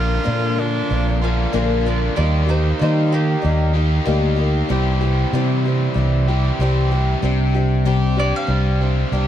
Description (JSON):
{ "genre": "folk rock and heartland rock", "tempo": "95 BPM", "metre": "4/4", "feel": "straight", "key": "unclear", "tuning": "A4 = 435 Hz", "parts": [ { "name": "edgy tenor saxophone", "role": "melody", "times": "0.0-1.2 s", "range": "D4 to F4", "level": "-26 LUFS", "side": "right 3 dB", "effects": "none" }, { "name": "picked old ladder-braced acoustic guitar", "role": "accompaniment", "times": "0.0-9.3 s", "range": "Bb2 to Bb4", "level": "-24 LUFS", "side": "left 6 dB", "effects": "none" }, { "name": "mellow accordion", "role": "sustained chords", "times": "0.0-9.3 s", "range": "Bb3 to C5", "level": "-32 LUFS", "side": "right 3 dB", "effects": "none" }, { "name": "biting overdriven guitar", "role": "riff", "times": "0.0-9.3 s", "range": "Bb2 to G4", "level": "-24 LUFS", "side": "right 2 dB", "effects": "none" }, { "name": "fingered electric bass", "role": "bass", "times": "0.0-9.3 s", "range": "Bb1 to Eb3", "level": "-18 LUFS", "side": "equal", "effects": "none" }, { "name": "bowl-back mandolin", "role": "second line", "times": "1.2-3.7, 8.2-9.3 s", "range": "Bb3 to F5", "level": "-28 LUFS", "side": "right 2 dB", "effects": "none" } ], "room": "little or no reverb", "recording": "dark, warm production", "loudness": "-16 LUFS", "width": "side -11 dB against mid", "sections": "0.0-7.2 A section; 7.2-9.3 B section", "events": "mandolin solo 7.2-9.3", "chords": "0.0 Bb; 2.2 Eb; 4.7 C; 7.2 Csus2" }